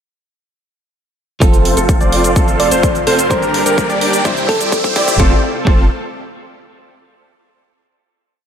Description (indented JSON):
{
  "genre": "EDM, festival progressive house",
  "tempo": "127 BPM",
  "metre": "4/4",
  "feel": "straight",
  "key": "F major",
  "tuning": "A4 = 441 Hz",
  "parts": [
    { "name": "direct-recorded clean electric guitar", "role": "accompaniment", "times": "1.4-5.9 s", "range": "G2 to C5", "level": "-22 LUFS", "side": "right 2 dB", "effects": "lush chorus, sidechain pumping, diffuse ambient delay" },
    { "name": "supersaw pad", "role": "sustained chords", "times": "1.4-5.4 s", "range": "C4 to E6", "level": "-24 LUFS", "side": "equal", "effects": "sidechain pumping, low-pass filter" },
    { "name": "bright baby grand piano", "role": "arpeggios", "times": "1.4-5.8 s", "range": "A4 to D5", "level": "-22 LUFS", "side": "left 1 dB", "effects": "sidechain pumping, low-pass filter, diffuse ambient delay" },
    { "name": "big supersaw lead", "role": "riff", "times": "1.4-5.8 s", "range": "C4 to D5", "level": "-18 LUFS", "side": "equal", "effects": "sidechain pumping, low-pass filter, diffuse ambient delay" },
    { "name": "saturated sub bass", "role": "bass", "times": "1.4-5.9 s", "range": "F1 to C2", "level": "-22 LUFS", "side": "equal", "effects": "sidechain pumping" },
    { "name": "electronic hi-hat and cabasa", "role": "drums", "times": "1.4-5.2 s", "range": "none", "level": "-22 LUFS", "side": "right 1 dB", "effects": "overdrive" },
    { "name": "electronic kick drum", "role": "drums", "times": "1.4-5.8 s", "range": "none", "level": "-14 LUFS", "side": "equal", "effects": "overdrive" },
    { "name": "riser", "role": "sound effects", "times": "2.9-5.2 s", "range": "none", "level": "-23 LUFS", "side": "equal", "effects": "none" },
    { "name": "thumb-piano-like synth pluck", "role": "melody", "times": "2.6-5.1 s", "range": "A4 to D5", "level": "-19 LUFS", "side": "equal", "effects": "chorus, diffuse ambient delay" }
  ],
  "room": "moderate plate reverb, RT60 1.6 s",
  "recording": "dreamy mix soaked in reverb, high-pass filter",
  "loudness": "-11 LUFS",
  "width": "side -8 dB against mid",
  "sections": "1.4-5.2 build; 5.2-7.1 final chord",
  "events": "build-up 1.4-5.2; filter sweep on supersaw synth 1.4-5.2; filter sweep 1.4-5.2; riser 2.9-5.2; drum fill 3.3-5.2",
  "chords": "1.4 F; 3.3 Gm; 4.3 C; 5.2 F"
}